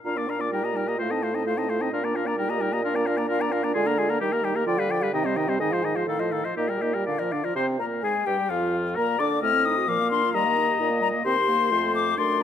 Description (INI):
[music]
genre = quick classical-period movement for wind quintet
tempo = 130 BPM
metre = 2/4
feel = rubato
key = Bb major, Eb major from 3.8 s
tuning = A4 = 441 Hz
[part]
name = concert flute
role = melody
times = 0.0-12.4 s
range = D5 to F6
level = -27 LUFS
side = left 8 dB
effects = none
[part]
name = clear French horn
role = accompaniment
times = 0.0-12.4 s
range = D3 to D4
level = -31 LUFS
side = left 1 dB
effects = none
[part]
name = dark clarinet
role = accompaniment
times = 0.0-12.4 s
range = F3 to D5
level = -31 LUFS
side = right 8 dB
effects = none
[part]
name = clear oboe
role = second line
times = 0.1-12.4 s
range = F4 to F5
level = -29 LUFS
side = left 4 dB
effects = none
[part]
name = dark bassoon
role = bass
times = 0.1-12.4 s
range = Eb2 to Eb3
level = -28 LUFS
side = right 1 dB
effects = none
[sound]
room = light reverb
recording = close, detailed microphones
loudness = -22 LUFS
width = side -9 dB against mid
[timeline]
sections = 0.1-7.6 A section; 7.6-12.4 B section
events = none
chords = 0.1 Bb; 0.5 Eb/Bb; 1.0 F7/A; 1.9 Bb; 2.4 Eb/Bb; 2.8 Bb; 3.8 Bb7/D; 4.2 Eb; 4.7 G7/D; 5.1 Cm; 5.6 Fm7/Ab; 6.1 F7/A; 6.6 Eb/Bb; 7.1 Bb; 7.6 Bbsus2; 8.0 N.C.; 8.5 Bb/F; 9.4 Adim7; 9.9 Bb; 10.3 Eb; 11.2 Cm7/Eb; 11.7 F